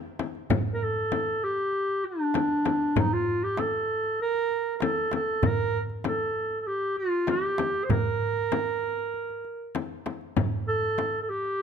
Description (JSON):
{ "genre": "Turkish makam ensemble", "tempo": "97 BPM", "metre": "4/4", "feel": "straight", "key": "G makam nihavent", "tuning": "A4 = 441 Hz", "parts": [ { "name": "darbuka", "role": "percussion", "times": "0.2-11.6 s", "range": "none", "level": "-31 LUFS", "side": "right 5 dB", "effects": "none" }, { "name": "frame drum", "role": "percussion", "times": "0.2-11.1 s", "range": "none", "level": "-30 LUFS", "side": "left 8 dB", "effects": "none" }, { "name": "warm clarinet", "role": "melody", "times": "0.7-11.6 s", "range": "D4 to C5", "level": "-26 LUFS", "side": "right 1 dB", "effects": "none" } ], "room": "moderate recital hall reverb, RT60 1.6 s", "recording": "close, detailed microphones", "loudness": "-25 LUFS", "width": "side -7 dB against mid", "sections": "0.0-11.6 A section", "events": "none", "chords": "none" }